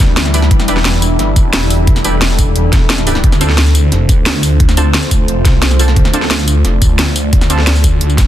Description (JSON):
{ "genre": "dark technical drum and bass", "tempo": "176 BPM", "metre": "4/4", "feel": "straight", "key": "unclear", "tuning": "A4 = 436 Hz", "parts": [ { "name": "deep dark ambient pad", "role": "sustained chords", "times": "0.0-8.3 s", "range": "G3 to D5", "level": "-18 LUFS", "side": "left 1 dB", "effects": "chorus, built-in reverb, sidechain pumping" }, { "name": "orchestra-hit-like synth stab", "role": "stabs", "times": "0.0-8.3 s", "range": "C4 to B4", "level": "-22 LUFS", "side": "right 2 dB", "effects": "built-in reverb, vintage 12-bit sampler grit, dub echo" }, { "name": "phased detuned saw bass", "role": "bass", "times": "0.0-8.3 s", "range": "E1 to D2", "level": "-13 LUFS", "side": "equal", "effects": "phaser, overdrive" }, { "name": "drum and bass drum kit", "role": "drums", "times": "0.0-8.2 s", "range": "hi-hat, snare drum, tambourine", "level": "-16 LUFS", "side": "equal", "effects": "overdrive" }, { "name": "electronic kick drum", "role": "drums", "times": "0.0-8.2 s", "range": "none", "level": "-11 LUFS", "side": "equal", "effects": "overdrive" } ], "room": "digital ambience", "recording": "dense, heavily limited modern master", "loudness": "-9 LUFS", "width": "side -12 dB against mid", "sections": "0.0-8.3 A section", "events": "none", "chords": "0.0 Em7; 3.2 Dm7", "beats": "0.17 | 0.51 0.85 1.19 1.53 | 1.87 2.21 2.56 2.90 | 3.24 3.58 3.92 4.26 | 4.60 4.94 5.28 5.62 | 5.96 6.31 6.65 6.99 | 7.33 7.67 8.01" }